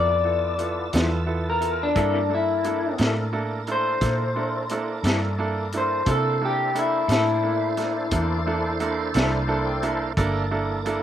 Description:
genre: slow blues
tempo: 58 BPM (dotted quarters)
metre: 12/8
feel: straight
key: unclear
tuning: A4 = 439 Hz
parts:
  - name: electric guitar through a small old amp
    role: melody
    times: 0.0-9.1 s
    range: D4 to D5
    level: -24 LUFS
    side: left 3 dB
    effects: slapback echo
  - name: bright grand piano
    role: accompaniment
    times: 0.0-11.0 s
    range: Bb3 to A5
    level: -28 LUFS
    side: right 4 dB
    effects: slapback echo
  - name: tonewheel organ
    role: sustained chords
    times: 0.0-11.0 s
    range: Bb3 to A5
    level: -32 LUFS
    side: equal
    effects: slow rotary speaker, chorus vibrato
  - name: vintage muted fingered electric bass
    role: bass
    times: 0.0-11.0 s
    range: G1 to C3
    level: -28 LUFS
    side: equal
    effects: none
  - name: crunchy breakbeat drum kit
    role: drums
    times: 0.6-11.0 s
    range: hi-hat, kick drum, snare drum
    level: -26 LUFS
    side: equal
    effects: none
  - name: electric guitar through a small old amp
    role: accompaniment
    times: 0.9-9.4 s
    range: G2 to A4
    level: -28 LUFS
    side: left 3 dB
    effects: tremolo
room: little or no reverb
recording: recorded outdoors, with no room sound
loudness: -21 LUFS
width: side -10 dB against mid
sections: 0.0-11.0 A section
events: clean electric guitar solo 0.0-11.0; grand piano fill 9.2-10.2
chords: 0.0 G13 (rootless); 2.0 C13

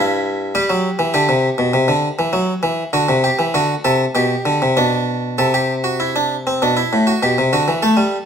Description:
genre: classical, baroque-style two-part invention for harpsichord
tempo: 99 BPM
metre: 4/4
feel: straight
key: C major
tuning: A4 = 440 Hz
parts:
  - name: harpsichord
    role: solo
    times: 0.0-8.3 s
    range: G2 to A4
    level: -15 LUFS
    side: equal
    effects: none
room: wet stone room reverb, RT60 1.0 s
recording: none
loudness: -15 LUFS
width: side -7 dB against mid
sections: 0.0-5.4 A section; 5.4-8.3 B section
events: none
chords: 0.0 C (rootless); 0.6 G; 1.7 Cadd9 (rootless); 2.9 D7; 4.2 G/B; 5.4 C; 6.6 Bm

